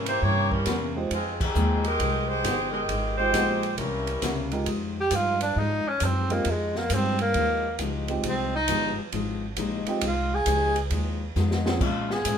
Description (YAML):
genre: jazz, big band swing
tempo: 135 BPM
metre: 4/4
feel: swing 66% on 8ths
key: F minor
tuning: A4 = 440 Hz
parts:
  - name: mellow saxophone section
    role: melody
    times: 0.0-4.5 s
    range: Eb3 to Db5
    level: -26 LUFS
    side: equal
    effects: none
  - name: picked steel-string acoustic guitar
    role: accompaniment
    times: 0.0-12.4 s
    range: Bb2 to G4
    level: -32 LUFS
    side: left 5 dB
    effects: none
  - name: upright bass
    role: bass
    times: 0.0-12.4 s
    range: G1 to Bb2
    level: -29 LUFS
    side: right 1 dB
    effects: none
  - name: open jazz drum kit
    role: drums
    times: 0.1-12.4 s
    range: crash cymbal, hi-hat, kick drum, ride cymbal, snare drum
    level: -32 LUFS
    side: right 1 dB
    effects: none
  - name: warm grand piano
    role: accompaniment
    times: 1.0-11.8 s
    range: Ab3 to C5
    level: -30 LUFS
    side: right 3 dB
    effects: none
  - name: breathy tenor saxophone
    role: melody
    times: 5.0-12.4 s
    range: Ab3 to Ab4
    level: -26 LUFS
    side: right 1 dB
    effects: none
room: moderate large studio reverb, RT60 0.9 s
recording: minimal, uncompressed stereo recording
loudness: -23 LUFS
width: side -8 dB against mid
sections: 0.0-4.7 A section; 4.7-12.4 B section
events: band accent 1.3; tenor saxophone solo 4.7-12.4; drum fill 11.4-11.8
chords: 0.0 C7b9; 1.1 Fm9; 3.8 C7b9; 4.7 Fm9; 11.8 Bbm7